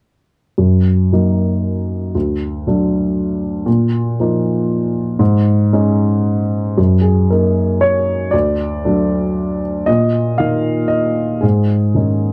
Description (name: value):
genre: neoclassical minimalist piano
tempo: 117 BPM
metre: 3/4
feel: rubato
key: F# major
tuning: A4 = 442 Hz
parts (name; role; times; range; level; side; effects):
- warm upright piano; solo; 0.6-12.3 s; D2 to E#5; -16 LUFS; equal; none
room: moderate booth ambience, RT60 0.2 s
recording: none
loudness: -16 LUFS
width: mono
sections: 0.6-6.8 A section; 6.8-12.3 B section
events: none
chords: 0.6 F#6; 2.1 D; 3.7 A#sus4; 5.2 G#sus4; 6.8 F#6; 8.3 D; 9.9 A#sus4; 11.4 G#sus4